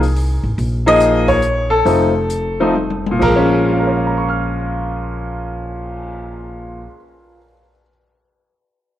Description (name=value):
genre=jazz piano trio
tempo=124-146 BPM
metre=3/4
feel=swing 66% on 8ths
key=Bb minor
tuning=A4 = 440 Hz
part: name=upright bass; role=bass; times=0.0-6.9 s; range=F1 to C2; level=-21 LUFS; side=equal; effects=none
part: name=open jazz drum kit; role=drums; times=0.0-6.0 s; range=crash cymbal, cymbal swell, hi-hat, kick drum, toms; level=-28 LUFS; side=left 3 dB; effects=none
part: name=bright upright piano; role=melody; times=0.9-7.9 s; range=Bb2 to F6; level=-16 LUFS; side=left 1 dB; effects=slapback echo
room=moderate spring reverb, RT60 2.0 s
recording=1960s-style stereo, faint mains hum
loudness=-14 LUFS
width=side -12 dB against mid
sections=0.0-3.2 A section; 3.2-6.1 B section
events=slowing down 0.6-3.2; drum fill 2.7-3.2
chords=0.0 Am; 0.6 Bbm7; 1.8 F7; 3.2 Bbm7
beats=0.17 | 0.58 1.00 1.42 | 1.84 2.28 2.74 | 3.21 3.70 4.18 | 4.67 5.15 5.64